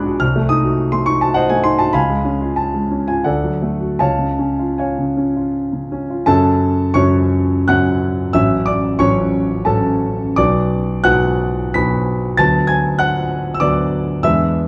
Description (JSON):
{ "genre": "classical, romantic character piece for solo piano", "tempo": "75-105 BPM", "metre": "3/4", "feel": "rubato", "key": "F# minor", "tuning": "A4 = 440 Hz", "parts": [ { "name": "warm grand piano", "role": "solo", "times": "0.0-14.7 s", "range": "A1 to B6", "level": "-17 LUFS", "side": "equal", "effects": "none" } ], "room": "moderate large studio reverb, RT60 1.4 s", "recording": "dark, warm production", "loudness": "-17 LUFS", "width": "mono", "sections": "0.0-6.3 A section; 6.3-14.7 B section", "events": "none", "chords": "0.2 Cdim7; 1.9 C#; 3.3 D; 4.0 C#; 6.3 F#m; 8.4 F#m/A; 10.4 Bm; 12.4 Bm/D" }